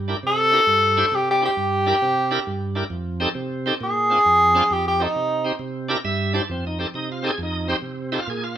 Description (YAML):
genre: blues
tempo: 134 BPM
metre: 4/4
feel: swing 68% on 8ths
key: F mixolydian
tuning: A4 = 440 Hz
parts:
  - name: bright tonewheel organ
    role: accompaniment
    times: 0.0-8.6 s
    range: F2 to A5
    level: -24 LUFS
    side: right 2 dB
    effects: slow rotary speaker, overdrive
  - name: warm tenor saxophone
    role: melody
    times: 0.3-5.6 s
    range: Eb4 to A4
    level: -17 LUFS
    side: equal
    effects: none
room: light reverb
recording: band playing live in one room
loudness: -18 LUFS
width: side -10 dB against mid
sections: 0.0-6.5 A section; 6.5-8.6 A section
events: tenor saxophone solo 0.0-6.5; tonewheel organ fill 5.8-6.5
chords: 0.0 C7; 2.9 F7; 3.8 Bb7; 4.7 F7; 5.6 C7; 6.5 F7